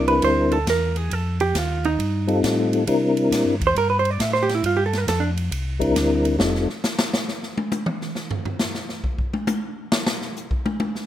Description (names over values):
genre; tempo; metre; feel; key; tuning
soul jazz organ trio; 136 BPM; 4/4; swing 66% on 8ths; C mixolydian; A4 = 442 Hz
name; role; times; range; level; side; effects
percussive tonewheel organ; melody; 0.0-6.7 s; G3 to Bb4; -19 LUFS; left 2 dB; slow rotary speaker, chorus vibrato
hollow-body jazz guitar; accompaniment; 0.0-5.3 s; D4 to E5; -21 LUFS; right 4 dB; none
mellow tonewheel organ; bass; 0.0-6.7 s; F1 to C3; -24 LUFS; equal; slow rotary speaker
swinging big-band drum kit; drums; 0.1-11.1 s; hi-hat, kick drum, ride cymbal, snare drum, toms; -26 LUFS; left 1 dB; none
room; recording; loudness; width
light reverb; minimal, uncompressed stereo recording; -20 LUFS; side -11 dB against mid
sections
0.0-11.1 A section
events
hollow-body jazz guitar solo 0.0-11.1; drum solo 6.4-11.1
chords
0.0 C9; 1.1 F9; 2.9 C9; 4.6 Fadd9; 5.5 C9; 6.4 N.C.